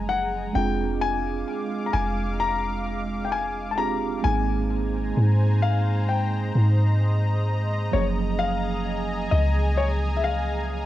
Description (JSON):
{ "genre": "contemporary R&B", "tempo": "65 BPM", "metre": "4/4", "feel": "straight", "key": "F dorian", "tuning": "A4 = 440 Hz", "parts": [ { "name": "warm concert grand piano", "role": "melody", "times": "0.0-10.9 s", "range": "Db5 to Bb5", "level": "-28 LUFS", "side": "left 6 dB", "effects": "cassette tape, tape echo" }, { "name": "mellow tine electric piano", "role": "accompaniment", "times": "0.0-10.9 s", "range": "F3 to Ab4", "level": "-30 LUFS", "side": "right 8 dB", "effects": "medium stereo tremolo, cassette tape" }, { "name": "lush unison pad", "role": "sustained chords", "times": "0.0-10.9 s", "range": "Ab3 to D6", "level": "-31 LUFS", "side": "equal", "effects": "chorus, cassette tape" }, { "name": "soft 808-style bass", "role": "bass", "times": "0.0-10.9 s", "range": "F1 to Ab2", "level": "-24 LUFS", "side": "equal", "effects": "none" } ], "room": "light reverb", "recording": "home recording on cassette", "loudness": "-22 LUFS", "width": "side -14 dB against mid", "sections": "0.0-10.9 A section", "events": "none", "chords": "0.0 Gbmaj9; 0.6 Fm69; 4.2 Abmaj9; 7.9 Gbmaj9" }